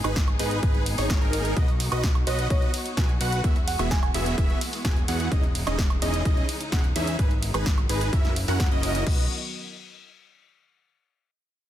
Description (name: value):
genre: EDM, festival progressive house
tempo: 128 BPM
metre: 4/4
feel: straight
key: B major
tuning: A4 = 439 Hz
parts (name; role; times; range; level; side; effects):
- rich symphonic string section; sustained chords; 0.0-9.3 s; B2 to G#4; -36 LUFS; left 1 dB; sidechain pumping
- wide unison lead; arpeggios; 0.0-9.2 s; A#4 to G#5; -34 LUFS; left 1 dB; sidechain pumping, digital delay
- dense compressed supersaw; riff; 0.0-9.2 s; B3 to G#5; -30 LUFS; right 1 dB; sidechain pumping, digital delay
- fat analog bass; bass; 0.0-9.3 s; E1 to E2; -29 LUFS; equal; sidechain pumping
- big-room dance drum kit; drums; 0.0-9.2 s; crash cymbal, hi-hat, ride cymbal, snare drum, woodblock; -32 LUFS; right 1 dB; none
- electronic kick drum; drums; 0.2-9.2 s; none; -24 LUFS; equal; overdrive
- bell-like FM electric piano; melody; 2.3-4.1 s; C#5 to G#5; -34 LUFS; right 3 dB; chorus, tremolo, cassette tape, digital delay
room: little or no reverb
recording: dense, heavily limited modern master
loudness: -22 LUFS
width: side -12 dB against mid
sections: 0.0-9.1 A section; 9.1-10.9 B section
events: drop 0.0-9.1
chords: 0.0 G#m; 1.6 B; 3.4 Eadd9; 5.3 C#madd9/E; 7.2 G#m; 8.1 F#7; 9.1 B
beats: 0.16 0.63 1.10 | 1.57 2.04 2.50 2.97 | 3.44 3.91 4.38 4.85 | 5.32 5.79 6.25 6.72 | 7.19 7.66 8.13 8.60 | 9.07